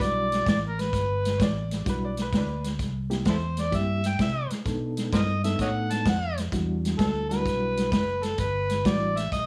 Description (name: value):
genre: electric blues shuffle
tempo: 129 BPM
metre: 4/4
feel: swing 67% on 8ths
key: E minor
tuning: A4 = 439 Hz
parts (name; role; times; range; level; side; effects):
- overdriven harmonica; melody; 0.0-9.5 s; E4 to A5; -30 LUFS; equal; none
- barky reed electric piano; accompaniment; 0.0-9.1 s; G3 to A4; -34 LUFS; equal; fast tremolo
- fingered electric bass; bass; 0.0-9.5 s; F#1 to C3; -32 LUFS; equal; none
- vintage drum kit; drums; 0.0-9.5 s; hi-hat, kick drum, snare drum; -30 LUFS; equal; none
- bright upright piano; second line; 1.4-2.7 s; D4 to D5; -38 LUFS; equal; slapback echo
room: moderate studio reverb, RT60 0.9 s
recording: small room ambience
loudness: -26 LUFS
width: mono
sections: 0.0-9.5 A section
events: none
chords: 0.0 Em9; 2.8 C7; 4.7 B7#9; 6.5 Em9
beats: 0.46 | 0.93 1.39 1.86 2.33 | 2.79 3.26 3.73 4.19 | 4.66 5.13 5.59 6.06 | 6.53 6.99 7.46 7.92 | 8.39 8.86 9.32